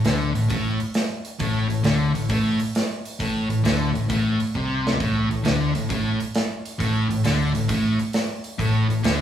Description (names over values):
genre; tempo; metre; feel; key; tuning
blues rock power trio and southern rock; 133 BPM; 4/4; swing 67% on 8ths; A minor; A4 = 440 Hz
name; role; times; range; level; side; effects
sludgy distorted guitar; riff; 0.0-9.2 s; A2 to D3; -22 LUFS; left 1 dB; overdrive
vintage muted picked electric bass; bass; 0.0-9.2 s; A1 to D2; -27 LUFS; equal; none
big rock drum kit; drums; 0.0-9.2 s; hi-hat, kick drum, snare drum, toms; -26 LUFS; right 1 dB; none
room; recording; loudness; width
wet stone room reverb, RT60 1.2 s; band playing live in one room, small room ambience; -20 LUFS; side -10 dB against mid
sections
0.0-9.2 A section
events
drum fill 4.5-5.0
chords
none